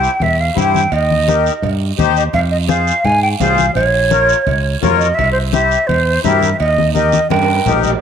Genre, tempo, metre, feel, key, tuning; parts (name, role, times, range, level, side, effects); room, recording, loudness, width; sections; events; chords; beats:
latin, cumbia; 169 BPM; 4/4; straight; A4 = 437 Hz
hollow concert flute; melody; 0.0-7.9 s; C5 to Ab5; -15 LUFS; right 2 dB
accordion; accompaniment; 0.0-7.9 s; Eb4 to Db5; -19 LUFS; left 11 dB; light tremolo tuning
fingered electric bass; bass; 0.0-7.9 s; Bb1 to Ab2; -18 LUFS; right 1 dB
guiro; percussion; 0.0-8.0 s; -28 LUFS; right 18 dB
congas; percussion; 0.2-7.9 s; -21 LUFS; left 8 dB
cowbell and timbales; percussion; 0.2-8.0 s; -24 LUFS; right 15 dB
moderate spring reverb, RT60 1.8 s, studio reverb; 1960s-style stereo with parts hard left and right; -12 LUFS; side -8 dB against mid
0.0-8.0 A section
drum fill 7.0-8.0
0.0 C; 0.9 Eb; 2.3 Fm; 3.8 Bbm; 5.2 C7; 6.6 Eb
0.21 0.57 | 0.93 1.28 1.64 1.99 | 2.35 2.70 3.05 3.41 | 3.76 4.12 4.47 4.83 | 5.18 5.54 5.89 6.25 | 6.60 6.96 7.31 7.66